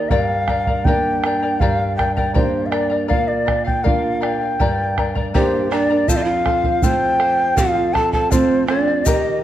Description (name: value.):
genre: andean folk, Andean ensemble.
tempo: 80 BPM.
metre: 2/4.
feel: straight.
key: unclear.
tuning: A4 = 440 Hz.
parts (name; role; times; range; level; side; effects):
breathy mellow large quena; melody; 0.0-9.4 s; C5 to A5; -20 LUFS; left 1 dB; none.
charango; accompaniment; 0.0-9.4 s; G4 to Bb5; -24 LUFS; left 4 dB; none.
flamenco guitar; accompaniment; 0.0-9.4 s; F2 to G4; -24 LUFS; right 2 dB; none.
bombo; percussion; 0.1-9.2 s; none; -22 LUFS; right 2 dB; none.
breathy large pan pipes; second line; 5.3-9.4 s; C4 to C5; -21 LUFS; right 4 dB; none.
egg shaker; percussion; 6.1-9.2 s; none; -29 LUFS; left 8 dB; none.
room: moderate recital hall reverb, RT60 1.5 s.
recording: dark, warm production.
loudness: -15 LUFS.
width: side -12 dB against mid.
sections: 0.0-6.1 A section; 6.1-9.4 A section.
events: none.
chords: 0.1 Gm; 3.1 Bb; 4.6 Gm; 6.1 F.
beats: | 0.12 0.86 | 1.61 2.36 | 3.10 3.85 | 4.60 5.34 | 6.09 6.83 | 7.58 8.32 | 9.07.